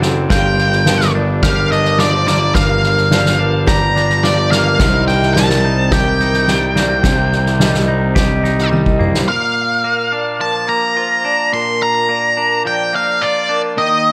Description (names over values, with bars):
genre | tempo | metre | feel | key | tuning
post-rock | 107 BPM | 4/4 | straight | unclear | A4 = 440 Hz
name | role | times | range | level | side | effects
pedal steel guitar | sustained chords | 0.0-14.1 s | C3 to G5 | -30 LUFS | equal | none
twangy electric guitar | arpeggios | 0.0-14.1 s | G2 to A4 | -25 LUFS | equal | slapback echo
vibraphone with medium hard mallets | arpeggios | 0.0-14.1 s | A4 to F5 | -25 LUFS | equal | slapback echo
fuzz picked electric bass | bass | 0.0-9.2 s | F#1 to C2 | -19 LUFS | equal | overdrive
soft-mallet drum kit | drums | 0.0-9.3 s | kick drum, snare drum, toms | -20 LUFS | equal | none
octave-fuzz lead guitar | melody | 0.3-14.1 s | D5 to C6 | -18 LUFS | equal | distortion, slapback echo
room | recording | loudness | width
light reverb | none | -14 LUFS | mono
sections
0.0-9.3 A section; 9.3-14.1 B section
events
drum fill 8.7-9.3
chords
0.3 Gm7; 4.8 Cm7; 9.3 Bb